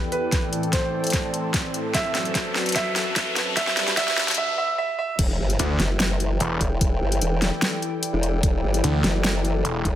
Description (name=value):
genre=heavy wobble dubstep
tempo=148 BPM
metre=4/4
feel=half-time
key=E minor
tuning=A4 = 440 Hz
part: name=warm concert grand piano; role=melody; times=0.0-5.2 s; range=B4 to E5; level=-27 LUFS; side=right 3 dB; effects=dub echo
part: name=lush unison pad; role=sustained chords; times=0.0-10.0 s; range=E2 to B4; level=-31 LUFS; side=left 1 dB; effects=chorus, sidechain pumping
part: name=riser and impact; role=sound effects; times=0.9-6.8 s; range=none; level=-31 LUFS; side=left 1 dB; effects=none
part: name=airy breathy pad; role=texture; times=0.0-10.0 s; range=G3 to C6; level=-31 LUFS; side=left 1 dB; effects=chorus, sidechain pumping
part: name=dubstep drum kit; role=drums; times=0.1-9.9 s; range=crash cymbal, hi-hat, snare drum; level=-25 LUFS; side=equal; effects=overdrive, high-pass filter on snare, high-pass filter on hats, high-pass filter on cymbals
part: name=electronic kick drum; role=drums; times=0.3-9.9 s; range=none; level=-24 LUFS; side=equal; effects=overdrive
part: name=formant-sweep wobble bass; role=bass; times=5.2-10.0 s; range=E1 to G1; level=-23 LUFS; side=equal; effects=chorus, overdrive
part: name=snarling distorted saw bass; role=bass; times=5.6-9.8 s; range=E1 to D2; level=-23 LUFS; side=equal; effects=distortion, overdrive
room=light reverb, digital ambience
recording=high-pass filter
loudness=-20 LUFS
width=side -11 dB against mid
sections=0.0-5.2 A section; 5.2-10.0 B section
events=build-up 0.0-5.2; drum fill 0.0-4.4; filter sweep 0.0-5.2; riser 0.9-4.4; break 4.4-5.2; drop 5.2-10.0; impact 5.2-6.8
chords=0.3 Am; 1.9 F#dim; 3.6 G; 5.2 Em